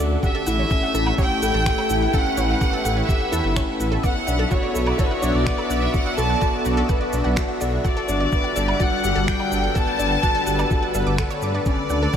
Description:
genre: piano and strings electronica.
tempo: 126 BPM.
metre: 4/4.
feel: straight.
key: unclear.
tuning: A4 = 436 Hz.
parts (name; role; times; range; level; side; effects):
lush unison pad; sustained chords; 0.0-12.2 s; D3 to F#5; -28 LUFS; equal; chorus, phaser, sidechain pumping.
analog pluck; arpeggios; 0.0-12.2 s; A4 to D6; -32 LUFS; right 1 dB; chorus, sidechain pumping, analog delay.
dark upright piano; riff; 0.0-12.2 s; B3 to A4; -26 LUFS; left 2 dB; analog delay.
dark detuned saw bass; bass; 0.0-12.1 s; G1 to G2; -23 LUFS; equal; sidechain pumping.
clear chamber violin section; melody; 0.2-12.2 s; B4 to A5; -25 LUFS; equal; analog delay.
electronic kick drum; drums; 0.2-12.2 s; none; -23 LUFS; equal; studio reverb.
electronic shaker, woodblock and finger snaps; drums; 0.2-12.2 s; none; -35 LUFS; right 1 dB; studio reverb.
room: moderate huge ambient reverb, RT60 7.5 s.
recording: dreamy mix soaked in reverb.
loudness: -18 LUFS.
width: side -8 dB against mid.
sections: 0.0-12.2 A section.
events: none.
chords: 0.2 A7; 4.0 Bm7; 7.8 Gmaj9; 11.7 Dmaj7(no3).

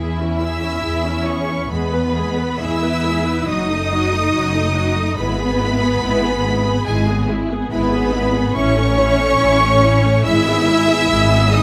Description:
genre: classical, slow romantic movement for string orchestra.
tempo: 71 BPM.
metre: 4/4.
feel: rubato.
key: unclear.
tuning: A4 = 441 Hz.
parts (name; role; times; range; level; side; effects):
clear symphonic violin section; melody; 0.0-11.6 s; E5 to E6; -25 LUFS; equal; none.
warm symphonic violin section; second line; 0.0-11.6 s; E4 to E5; -24 LUFS; equal; none.
rich symphonic viola section; accompaniment; 0.0-11.6 s; F#3 to B4; -25 LUFS; equal; none.
clear symphonic double bass section; bass; 0.0-11.6 s; F#1 to E2; -22 LUFS; equal; none.
rich symphonic cello section; bass; 0.0-11.6 s; E3 to E4; -25 LUFS; equal; none.
room: light reverb.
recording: close, detailed microphones.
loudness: -17 LUFS.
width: mono.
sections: 0.0-11.6 A section.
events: none.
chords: 0.0 C#m/E; 1.7 E; 3.5 D#dim/F#; 5.2 E/G#; 8.6 A; 10.2 E/G#.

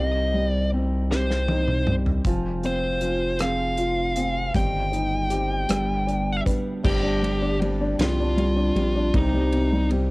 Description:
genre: six-eight pop ballad.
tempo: 52 BPM (dotted quarters).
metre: 6/8.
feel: straight.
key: C minor.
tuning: A4 = 440 Hz.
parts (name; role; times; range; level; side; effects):
fuzz lead guitar; melody; 0.0-9.9 s; Eb4 to G5; -27 LUFS; equal; distortion.
felt-muted upright piano; accompaniment; 0.0-10.1 s; C3 to B4; -27 LUFS; left 2 dB; cassette tape.
fingerpicked steel-string acoustic guitar; arpeggios; 0.0-10.1 s; G2 to Ab4; -30 LUFS; right 3 dB; cassette tape, tape echo.
round analog bass; bass; 0.0-10.1 s; F1 to C2; -26 LUFS; equal; none.
natural country drum kit; drums; 1.1-10.1 s; crash cymbal, hi-hat, kick drum, ride cymbal, rim click, snare drum, toms; -26 LUFS; equal; none.
room: small room reverb.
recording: home recording on cassette.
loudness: -21 LUFS.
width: side -22 dB against mid.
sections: 0.0-6.8 A section; 6.8-10.1 B section.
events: drum fill 1.1-2.2.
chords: 0.0 Cm; 2.2 Fm; 4.5 Cm/G; 5.7 G; 6.8 Gsus4; 9.1 Cm.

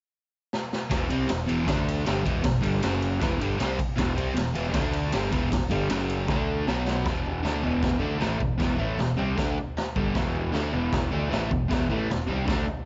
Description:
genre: garage rock duo or trio.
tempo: 156 BPM.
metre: 4/4.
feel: straight.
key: E minor.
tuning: A4 = 440 Hz.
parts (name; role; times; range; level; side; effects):
raw garage drum kit; drums; 0.5-12.8 s; kick drum, ride cymbal, snare drum, toms; -31 LUFS; equal; none.
crunchy overdriven guitar; riff; 0.9-12.7 s; E2 to D4; -29 LUFS; equal; none.
growling picked electric bass; bass; 0.9-12.7 s; E1 to D2; -34 LUFS; equal; overdrive.
room: light reverb, small room ambience.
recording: cassette tape, nothing above 7.6 kHz.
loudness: -26 LUFS.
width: mono.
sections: 0.9-7.1 A section; 7.1-12.9 B section.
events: drum fill 0.5-0.9, 6.3-7.1.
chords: 0.0 N.C.; 0.9 Em; 1.7 D5; 2.1 Em; 2.8 F#5; 3.2 Em; 4.8 D5; 5.1 Em; 5.9 F#5; 6.3 D5; 6.7 B5; 7.1 Em.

